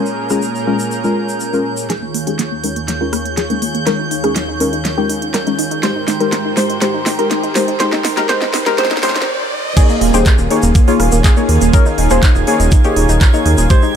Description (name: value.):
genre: progressive house.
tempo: 122 BPM.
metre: 4/4.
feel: straight.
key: Eb mixolydian.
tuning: A4 = 440 Hz.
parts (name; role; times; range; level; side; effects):
lush unison pad; sustained chords; 0.0-14.0 s; Eb2 to Db5; -22 LUFS; right 1 dB; chorus, sidechain pumping.
deep mellow chord stab; stabs; 0.0-13.8 s; Ab3 to Db5; -19 LUFS; left 3 dB; chorus, sidechain pumping, ping-pong delay.
drifting glass-harmonics texture; texture; 0.0-14.0 s; G6 to Ab6; -27 LUFS; right 4 dB; chorus, built-in reverb, sidechain pumping.
tube shaker; percussion; 0.1-1.9, 9.8-13.9 s; none; -26 LUFS; left 3 dB; none.
pop drum kit; drums; 0.3-13.8 s; crash cymbal, handclaps, hi-hat, rim click, snare drum; -21 LUFS; right 1 dB; none.
soft round pluck; arpeggios; 1.9-13.9 s; Bb3 to C5; -20 LUFS; right 1 dB; chorus, sidechain pumping, ping-pong delay.
riser; sound effects; 4.2-9.8 s; none; -27 LUFS; right 1 dB; none.
electronic kick drum; drums; 9.8-13.8 s; none; -10 LUFS; equal; none.
dark detuned saw bass; bass; 10.0-13.7 s; Eb1 to Eb2; -14 LUFS; equal; sidechain pumping.
room: light reverb.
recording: high-pass filter.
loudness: -12 LUFS.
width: side -8 dB against mid.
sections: 0.0-1.9 A section; 1.9-9.8 B section; 9.8-14.0 C section.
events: build-up 1.9-9.8; drum fill 1.9-9.3; filter sweep on synth pluck 1.9-9.8; filter sweep on synth stab 1.9-9.8; filter sweep on analog synth pad 1.9-9.8; stop 9.3-9.8; drop 9.8-14.0.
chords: 0.0 Bbm7; 1.9 Eb7sus4; 5.8 Abmaj7; 9.8 Eb7sus4.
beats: 0.42 0.92 1.41 | 1.90 2.39 2.88 3.37 | 3.87 4.36 4.85 5.34 | 5.83 6.33 6.82 7.31 | 7.80 8.29 8.78 9.28 | 9.77 10.26 10.75 11.24 | 11.73 12.23 12.72 13.21 | 13.70.